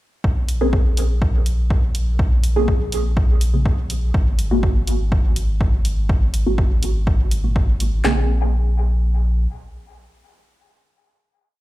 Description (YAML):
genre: dub techno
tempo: 123 BPM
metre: 4/4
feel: straight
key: Bb minor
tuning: A4 = 440 Hz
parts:
  - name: warm sub bass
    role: bass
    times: 0.2-9.5 s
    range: Ab1 to Bb1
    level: -20 LUFS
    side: equal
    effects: sidechain pumping
  - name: punchy analog drum machine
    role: drums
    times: 0.2-8.2 s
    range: handclaps, kick drum, snare drum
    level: -19 LUFS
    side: equal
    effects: overdrive
  - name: electronic hi-hat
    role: drums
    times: 0.5-7.9 s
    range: none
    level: -32 LUFS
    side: right 1 dB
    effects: overdrive
  - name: filtered dub chord stab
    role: stabs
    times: 0.6-11.6 s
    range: Cb3 to Ab4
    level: -24 LUFS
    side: equal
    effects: phaser, sidechain pumping, dub echo
room: little or no reverb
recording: played on a big sound system in a bare room, large studio reverb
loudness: -16 LUFS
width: side -16 dB against mid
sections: 0.2-8.0 groove; 8.0-11.6 final chord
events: filter sweep on synth stab 0.2-8.0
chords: 0.2 Bbm9; 4.1 Abm9; 8.0 Bbm9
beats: | 0.24 0.73 1.22 1.71 | 2.19 2.68 3.17 3.66 | 4.14 4.63 5.12 5.61 | 6.09 6.58 7.07 7.56 | 8.05 8.53 9.02 9.51 | 10.00 10.48 10.97 11.46